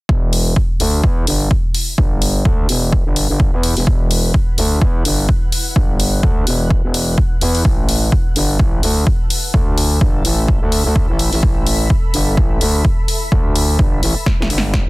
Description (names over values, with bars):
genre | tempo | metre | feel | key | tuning
bass house | 127 BPM | 4/4 | swing 56% on 16ths | E minor | A4 = 441 Hz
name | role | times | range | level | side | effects
growling FM bass | bass | 0.1-14.9 s | E1 to E2 | -17 LUFS | equal | tube saturation, sidechain pumping
electronic kick drum | drums | 0.1-14.8 s | none | -16 LUFS | equal | small room ambience
granular cloud pad | texture | 1.8-14.9 s | E4 to B5 | -30 LUFS | left 1 dB | built-in reverb, sidechain pumping
house drum kit | drums | 0.3-14.8 s | hi-hat, snare drum | -20 LUFS | left 1 dB | small room ambience
room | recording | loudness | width
little or no reverb | dense, heavily limited modern master | -13 LUFS | side -22 dB against mid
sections
0.1-14.9 A section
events
fade-in on ambient pad 0.1-14.9; drum fill 14.3-14.9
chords
0.1 Emadd9; 7.7 Asus4